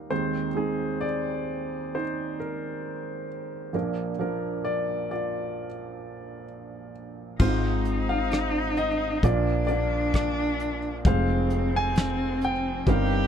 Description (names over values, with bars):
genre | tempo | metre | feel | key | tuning
acoustic folk-pop ballad | 66 BPM | 4/4 | straight | unclear | A4 = 441 Hz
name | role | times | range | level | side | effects
warm upright piano | melody | 0.0-13.3 s | F1 to Ab5 | -28 LUFS | right 1 dB | none
warm cello | second line | 7.4-13.3 s | C4 to G4 | -30 LUFS | left 1 dB | none
concert harp | arpeggios | 7.4-9.9 s | F4 | -35 LUFS | left 3 dB | none
woody fretless electric bass | bass | 7.4-13.3 s | F1 to Bb1 | -28 LUFS | left 1 dB | none
soft brush drum kit | drums | 7.4-13.1 s | crash cymbal, hi-hat, kick drum, rim click, snare drum | -26 LUFS | left 1 dB | none
room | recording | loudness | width
little or no reverb | close, detailed microphones | -24 LUFS | side -8 dB against mid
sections
0.0-7.4 A section; 7.4-13.3 B section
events
none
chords
0.1 Ab/Eb; 3.7 Bb; 7.4 Ab; 9.2 Bb; 11.1 Fm